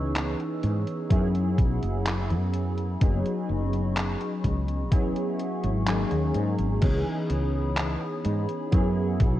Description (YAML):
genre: vaporwave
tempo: 63 BPM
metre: 4/4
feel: straight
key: C# dorian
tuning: A4 = 435 Hz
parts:
  - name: warbly lo-fi synth keys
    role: accompaniment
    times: 0.0-9.4 s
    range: E3 to G#4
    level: -29 LUFS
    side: equal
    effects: analog chorus, analog delay
  - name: warbly tape-like pad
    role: sustained chords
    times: 0.0-9.4 s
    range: D#4 to E6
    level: -37 LUFS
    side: right 1 dB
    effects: chorus, built-in reverb
  - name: woody fretless electric bass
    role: bass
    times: 0.0-9.4 s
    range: E1 to G#2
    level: -27 LUFS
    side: equal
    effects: wide subtle chorus
  - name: detuned 8-bit digital drum machine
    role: drums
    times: 0.2-9.4 s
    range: crash cymbal, handclaps, hi-hat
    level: -34 LUFS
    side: equal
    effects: gated reverb
  - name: electronic kick drum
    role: drums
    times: 1.1-9.4 s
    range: none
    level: -23 LUFS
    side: equal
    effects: none
room: light reverb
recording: cassette tape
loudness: -24 LUFS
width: side -14 dB against mid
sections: 0.0-6.8 A section; 6.8-9.4 B section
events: kick drops out 5.9-6.8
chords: 0.0 C#m9; 1.1 F#9sus4; 3.0 B69/F#; 4.9 E69; 5.9 G#9sus4; 6.8 C#m9; 8.7 F#9sus4